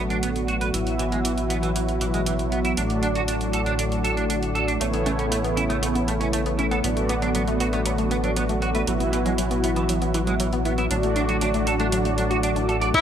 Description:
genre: synthwave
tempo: 118 BPM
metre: 4/4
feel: straight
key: unclear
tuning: A4 = 440 Hz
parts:
  - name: brassy analog pad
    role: sustained chords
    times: 0.0-13.0 s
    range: A2 to F#4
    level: -26 LUFS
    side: equal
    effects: chorus, sidechain pumping
  - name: mellow synth brass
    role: stabs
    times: 0.0-13.0 s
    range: A3 to E5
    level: -28 LUFS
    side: right 2 dB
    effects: chorus, cassette tape, ping-pong delay
  - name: chorused synth bass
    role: bass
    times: 0.0-13.0 s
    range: A1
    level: -27 LUFS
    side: equal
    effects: sidechain pumping
  - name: clean electric guitar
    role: riff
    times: 0.1-12.9 s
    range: E3 to D5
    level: -29 LUFS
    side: right 3 dB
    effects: ensemble chorus, low-pass filter, ping-pong delay
  - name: detuned 8-bit digital drum machine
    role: drums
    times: 0.1-13.0 s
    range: crash cymbal, hi-hat, tambourine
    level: -32 LUFS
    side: right 2 dB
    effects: none
  - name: analog pluck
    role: arpeggios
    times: 4.8-13.0 s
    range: F#3 to A4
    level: -29 LUFS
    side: left 1 dB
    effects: chorus, ping-pong delay
  - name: warm tenor saxophone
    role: melody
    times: 12.9-13.0 s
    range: E4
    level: -14 LUFS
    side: left 3 dB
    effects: none
  - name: soft synth bell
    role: second line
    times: 12.9-13.0 s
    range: E4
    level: -26 LUFS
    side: left 2 dB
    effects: chorus
  - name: electronic kick drum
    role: drums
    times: 12.9-13.0 s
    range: none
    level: -24 LUFS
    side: equal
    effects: none
room: moderate lush hall reverb, RT60 1.6 s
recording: bright 1980s-style digital production, faint mains hum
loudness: -21 LUFS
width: side -9 dB against mid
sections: 0.0-12.9 A section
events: filter sweep on analog polysynth 0.0-12.9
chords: 0.0 Bm7/A; 0.7 Esus2/A; 2.8 D/A; 4.8 Aadd9; 6.8 Bm7/A; 8.9 Esus2/A; 10.9 D/A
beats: 0.23 | 0.74 1.25 1.76 2.27 | 2.77 3.28 3.79 4.30 | 4.81 5.32 5.82 6.33 | 6.84 7.35 7.86 8.37 | 8.88 9.38 9.89 10.40 | 10.91 11.42 11.93 12.43 | 12.94

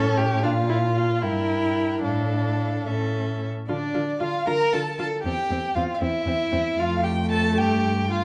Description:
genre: quick classical-period movement for string quartet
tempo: 72-79 BPM (dotted quarters)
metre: 6/8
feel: rubato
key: D minor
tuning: A4 = 440 Hz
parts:
  - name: dark violin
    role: melody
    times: 0.0-8.2 s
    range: C#5 to Bb5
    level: -33 LUFS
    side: equal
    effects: none
  - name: rich violin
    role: second line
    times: 0.0-8.2 s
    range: D4 to Bb4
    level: -29 LUFS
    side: equal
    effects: none
  - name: rich viola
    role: accompaniment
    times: 0.0-8.2 s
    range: A3 to F4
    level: -29 LUFS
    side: equal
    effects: none
  - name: dark cello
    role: bass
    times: 0.0-8.2 s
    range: E2 to D3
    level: -29 LUFS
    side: equal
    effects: none
room: moderate recital hall reverb, RT60 1.7 s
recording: dark, warm production, nothing above 10.6 kHz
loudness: -24 LUFS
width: mono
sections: 0.0-3.7 A section; 3.7-8.2 B section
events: none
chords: 0.4 Bb5; 1.2 Edim/G; 2.0 Dm/A; 2.9 A; 3.7 Dm; 5.2 C/E; 6.8 F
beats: | 0.44 1.22 | 2.04 2.87 | 3.68 4.47 | 5.25 6.01 | 6.78 7.57

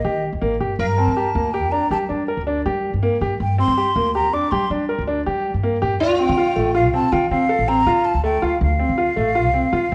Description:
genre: contemporary instrumental, chamber music in an uneven meter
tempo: 161 BPM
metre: 7/4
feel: straight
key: G minor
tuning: A4 = 440 Hz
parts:
  - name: breathy hollow jazz flute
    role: melody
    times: 0.0-9.9 s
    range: D5 to D6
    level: -24 LUFS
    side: equal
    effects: none
  - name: sitar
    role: second line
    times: 0.0-9.9 s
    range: F4 to Bb4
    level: -28 LUFS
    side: equal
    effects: none
  - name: upright bass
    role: bass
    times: 0.0-9.9 s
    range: G1 to G3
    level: -26 LUFS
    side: equal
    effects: none
  - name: clear baby grand piano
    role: arpeggios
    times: 0.1-9.9 s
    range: A3 to Bb4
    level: -23 LUFS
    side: equal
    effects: none
room: moderate recital hall reverb, RT60 1.6 s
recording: worn, warbling old tape, cassette tape, warbly pitch drift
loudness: -19 LUFS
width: mono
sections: 0.0-9.9 A section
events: none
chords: 0.0 Eb; 0.8 Gm; 6.0 Dm7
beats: 0.05 0.42 | 0.80 1.17 1.54 1.91 2.28 2.66 3.03 | 3.40 3.77 4.15 4.52 4.89 5.26 5.64 | 6.01 6.38 6.75 7.12 7.50 7.87 8.24 | 8.62 8.99 9.36 9.73

